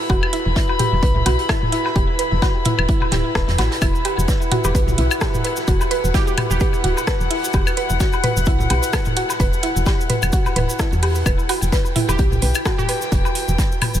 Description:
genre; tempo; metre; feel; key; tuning
minimal techno; 129 BPM; 4/4; swing 56% on 16ths; E minor; A4 = 440 Hz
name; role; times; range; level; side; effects
dark chamber string section; texture; 0.0-14.0 s; E4 to B5; -25 LUFS; left 2 dB; sidechain pumping
mallet-like synth pluck; riff; 0.1-12.9 s; E4 to B4; -24 LUFS; right 1 dB; chorus, sidechain pumping, tape echo
woody FM bass; bass; 0.1-14.0 s; D1 to E2; -20 LUFS; equal; sidechain pumping
electronic kick drum; drums; 0.1-13.7 s; none; -20 LUFS; equal; none
vintage drum kit; drums; 0.1-13.9 s; hi-hat, snare drum; -34 LUFS; right 3 dB; sidechain pumping on hats, high-pass filter on hats, high-pass filter on snare, high-pass filter on room
electronic woodblock and toms; percussion; 0.1-13.9 s; none; -25 LUFS; left 2 dB; ping-pong delay
house drum kit; drums; 0.3-13.9 s; hi-hat, rim click; -29 LUFS; right 1 dB; none
cabasa; percussion; 3.8-14.0 s; none; -32 LUFS; left 1 dB; none
glassy wavetable pluck; melody; 4.6-6.7, 12.1-12.9 s; G4; -32 LUFS; right 3 dB; chorus, ping-pong delay
room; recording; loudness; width
moderate huge ambient reverb, RT60 7.4 s; dreamy mix soaked in reverb; -16 LUFS; side -11 dB against mid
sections
0.0-14.0 A section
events
none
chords
0.0 Em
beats
| 0.10 0.56 1.03 1.49 | 1.96 2.42 2.89 3.35 | 3.82 4.28 4.75 5.21 | 5.68 6.14 6.61 7.07 | 7.54 8.00 8.47 8.93 | 9.40 9.86 10.33 10.79 | 11.26 11.72 12.19 12.65 | 13.12 13.59

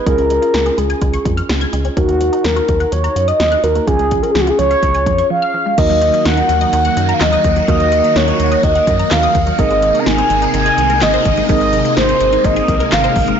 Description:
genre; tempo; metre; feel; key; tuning
synth-pop; 126 BPM; 4/4; straight; Eb dorian from 5.8 s; A4 = 439 Hz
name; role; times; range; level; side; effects
mellow horn-like synth lead; melody; 0.0-13.4 s; Gb4 to Bb5; -15 LUFS; equal; chorus, ping-pong delay
mellow tine electric piano; accompaniment; 0.0-13.4 s; Bb3 to Bb4; -22 LUFS; right 7 dB; none
resonant blip pluck; arpeggios; 0.0-13.4 s; Eb3 to Ab6; -24 LUFS; left 1 dB; chorus, phaser, ping-pong delay
round analog bass; bass; 0.1-13.3 s; Ab1 to Gb2; -19 LUFS; equal; none
deep house drum kit; drums; 0.1-13.4 s; crash cymbal, handclaps, hi-hat, kick drum, snare drum; -20 LUFS; equal; overdrive
phased string machine; sustained chords; 5.8-13.4 s; C3 to Gb4; -19 LUFS; left 1 dB; ensemble chorus, phaser
room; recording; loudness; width
moderate lush hall reverb, RT60 1.8 s, digital ambience; blown-out, overdriven recording, overdrive, nothing above 7.6 kHz; -12 LUFS; side -8 dB against mid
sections
0.0-5.8 A section; 5.8-13.4 B section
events
break 5.3-5.8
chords
0.1 Db; 2.0 Ebm; 3.9 Db; 5.8 Ebm; 9.6 Abadd9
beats
| 0.07 0.54 1.02 1.49 | 1.97 2.45 2.92 3.40 | 3.87 4.35 4.83 5.30 | 5.78 6.25 6.73 7.21 | 7.68 8.16 8.64 9.11 | 9.59 10.06 10.54 11.02 | 11.49 11.97 12.45 12.92 | 13.40

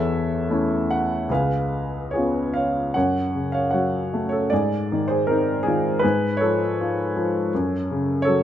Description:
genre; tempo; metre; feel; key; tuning
classical, lyrical solo piano; 70-82 BPM; 4/4; rubato; F# harmonic minor; A4 = 440 Hz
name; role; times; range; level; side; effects
warm baby grand piano; solo; 0.0-8.4 s; C#2 to F#5; -20 LUFS; equal; none
room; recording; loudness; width
light reverb; close, detailed microphones; -20 LUFS; side -10 dB against mid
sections
0.0-2.9 A section; 2.9-8.4 B section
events
none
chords
0.0 A/E; 1.3 C#7; 2.9 F#m; 4.5 G#; 6.0 C#/G#; 7.5 F#m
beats
0.51 1.29 2.14 | 2.95 3.73 4.51 5.28 | 6.03 6.77 7.52 8.26

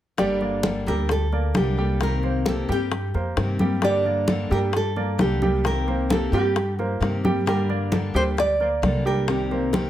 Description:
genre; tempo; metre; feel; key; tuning
latin, Cuban son and guajira; 132 BPM; 4/4; straight; G minor; A4 = 439 Hz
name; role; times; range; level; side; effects
nylon-string guitar; melody; 0.2-9.7 s; G4 to D5; -26 LUFS; right 1 dB; tape echo
picked steel-string acoustic guitar; accompaniment; 0.2-9.9 s; C3 to A4; -27 LUFS; left 4 dB; none
warm concert grand piano; arpeggios; 0.2-9.9 s; G3 to G5; -28 LUFS; right 4 dB; none
upright bass; bass; 0.2-9.9 s; G1 to G2; -26 LUFS; equal; none
bongos; percussion; 0.2-9.9 s; none; -29 LUFS; left 5 dB; none
congas; percussion; 0.2-9.9 s; none; -28 LUFS; equal; none
room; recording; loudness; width
light reverb; none; -20 LUFS; side -12 dB against mid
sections
0.2-9.9 A section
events
none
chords
0.2 Gmadd9; 2.0 Cm7; 3.8 Gmadd9; 5.6 Cm7; 7.5 Gmadd9; 9.3 Cm7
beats
| 0.18 0.64 1.09 1.55 | 2.00 2.46 2.92 3.37 | 3.83 4.28 4.74 5.19 | 5.65 6.10 6.56 7.01 | 7.47 7.92 8.37 8.83 | 9.28 9.74

